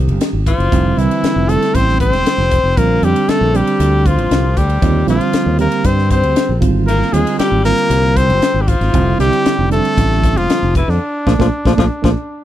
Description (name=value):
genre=electric jazz fusion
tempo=117 BPM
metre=4/4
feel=straight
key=unclear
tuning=A4 = 438 Hz
part: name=mellow reed electric piano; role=accompaniment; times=0.0-12.1 s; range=D3 to G4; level=-18 LUFS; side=right 8 dB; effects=fast tremolo
part: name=fingered electric bass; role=bass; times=0.0-12.1 s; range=E1 to G2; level=-15 LUFS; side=equal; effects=none
part: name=crisp fusion drum kit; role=drums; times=0.1-12.2 s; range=hi-hat, kick drum, ride cymbal, snare drum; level=-19 LUFS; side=left 1 dB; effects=none
part: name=bright trumpet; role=melody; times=0.5-12.4 s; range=D4 to C5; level=-18 LUFS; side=equal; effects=none
part: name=bright tenor saxophone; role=second line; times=0.5-12.1 s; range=D3 to C4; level=-21 LUFS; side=left 8 dB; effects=none
room=little or no reverb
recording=none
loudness=-12 LUFS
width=side -12 dB against mid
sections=0.0-12.4 A section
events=band accent 11.0-12.4; reed electric piano fill 12.0-12.4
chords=0.0 Abmaj7; 0.7 Fmaj9; 2.8 Bbmaj9; 4.8 Ebmaj9; 6.6 Abmaj9; 8.9 Fmaj9; 11.0 Bbmaj7